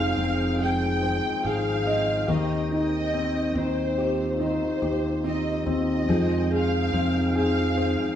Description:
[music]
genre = pop ballad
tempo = 71 BPM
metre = 4/4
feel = straight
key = F minor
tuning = A4 = 441 Hz
[part]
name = dark studio violin section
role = melody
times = 0.0-8.2 s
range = C5 to G5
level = -29 LUFS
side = left 1 dB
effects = none
[part]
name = warm grand piano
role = accompaniment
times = 0.0-8.2 s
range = Eb3 to Eb5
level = -27 LUFS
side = left 2 dB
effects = none
[part]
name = tonewheel organ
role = sustained chords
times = 0.0-8.2 s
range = F3 to G5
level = -31 LUFS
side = equal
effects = chorus vibrato, slow rotary speaker
[part]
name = fingerpicked plugged-in steel-string acoustic guitar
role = arpeggios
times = 0.0-8.2 s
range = F2 to Ab4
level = -33 LUFS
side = right 3 dB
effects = none
[part]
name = fingered electric bass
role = bass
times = 0.0-7.9 s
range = F1 to F2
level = -28 LUFS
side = right 1 dB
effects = none
[sound]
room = wet stone room reverb, RT60 1.2 s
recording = band playing live in one room, studio reverb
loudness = -22 LUFS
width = side -10 dB against mid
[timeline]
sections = 0.0-8.2 A section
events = none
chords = 0.0 Fm7; 2.3 Cm/Eb; 6.1 Fm7

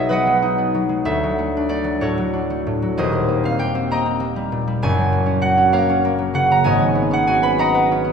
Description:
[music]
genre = classical, solo harp piece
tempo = 64 BPM (dotted quarters)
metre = 6/8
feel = rubato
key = unclear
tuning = A4 = 443 Hz
[part]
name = concert harp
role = solo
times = 0.0-8.1 s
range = D#1 to B5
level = -16 LUFS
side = equal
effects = none
[sound]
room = wet scoring stage reverb, RT60 2.1 s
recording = heard from further back in the room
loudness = -16 LUFS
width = side -6 dB against mid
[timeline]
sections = 0.0-8.1 A section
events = none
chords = 0.0 B6; 1.0 Dmaj7; 2.9 D#6; 4.8 F#maj7; 6.6 G#m11

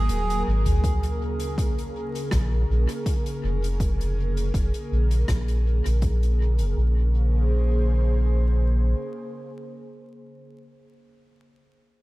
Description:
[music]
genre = ambient dub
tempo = 81 BPM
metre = 4/4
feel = swing 54% on 16ths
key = Bb minor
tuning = A4 = 443 Hz
[part]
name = airy breathy pad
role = sustained chords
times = 0.0-10.5 s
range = Db3 to C5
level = -31 LUFS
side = equal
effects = chorus
[part]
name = soft dub sub bass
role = bass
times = 0.0-8.9 s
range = Eb1 to Bb1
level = -21 LUFS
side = equal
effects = none
[part]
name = soft-mallet drum kit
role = drums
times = 0.1-6.7 s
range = hi-hat, rim click, toms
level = -31 LUFS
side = equal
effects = dub echo
[part]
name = electronic kick drum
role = drums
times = 0.8-6.2 s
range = none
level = -26 LUFS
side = equal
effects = none
[sound]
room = light reverb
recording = vinyl crackle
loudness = -21 LUFS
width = side -19 dB against mid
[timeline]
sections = 0.8-6.8 A section; 6.8-9.7 B section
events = break 0.0-0.8; filter sweep on sub bass 0.8-6.8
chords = 0.0 Ab7sus2; 0.8 Bbm7; 6.8 Bbm9

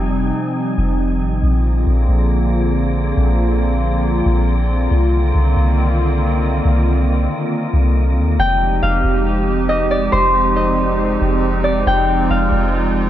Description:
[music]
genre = hip hop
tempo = 138 BPM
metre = 4/4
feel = half-time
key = F dorian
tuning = A4 = 436 Hz
[part]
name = hollow soft pad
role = sustained chords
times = 0.0-13.1 s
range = C3 to G4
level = -19 LUFS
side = right 1 dB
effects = chorus
[part]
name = soft 808-style bass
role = bass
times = 0.0-13.1 s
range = F1 to Eb2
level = -17 LUFS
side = equal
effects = none
[part]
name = wind-like tuned noise texture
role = texture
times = 0.0-13.1 s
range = G3 to Bb5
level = -28 LUFS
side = equal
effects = built-in reverb
[part]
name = Celtic harp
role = melody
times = 8.4-13.1 s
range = C5 to G5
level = -18 LUFS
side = left 1 dB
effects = low-pass filter, digital delay
[sound]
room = light reverb, digital ambience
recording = nothing above 7.6 kHz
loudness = -14 LUFS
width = side -12 dB against mid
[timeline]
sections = 0.0-8.4 A section; 8.4-13.1 B section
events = none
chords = 0.0 Fm9; 1.4 Bb7; 4.9 Cm11; 8.4 Fm9

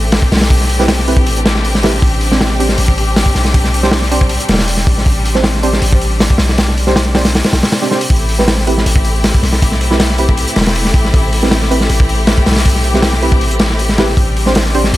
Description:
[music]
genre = drum and bass, jungle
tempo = 158 BPM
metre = 4/4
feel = straight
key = A minor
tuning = A4 = 440 Hz
[part]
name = clear symphonic string section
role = sustained chords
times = 0.0-15.0 s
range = G3 to G4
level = -19 LUFS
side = left 2 dB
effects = none
[part]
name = long sustained 808-style bass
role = bass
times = 0.0-15.0 s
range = E1 to B1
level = -15 LUFS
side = equal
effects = none
[part]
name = crunchy breakbeat drum kit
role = drums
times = 0.1-15.0 s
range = hi-hat, kick drum, snare drum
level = -13 LUFS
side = equal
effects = none
[part]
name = deep mellow chord stab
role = stabs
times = 0.8-14.8 s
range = C4 to C5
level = -19 LUFS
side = right 2 dB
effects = chorus, dub echo
[sound]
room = small room ambience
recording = none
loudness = -10 LUFS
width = side -16 dB against mid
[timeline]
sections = 0.0-15.0 A section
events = none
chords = 0.0 Am7; 14.2 Csus2

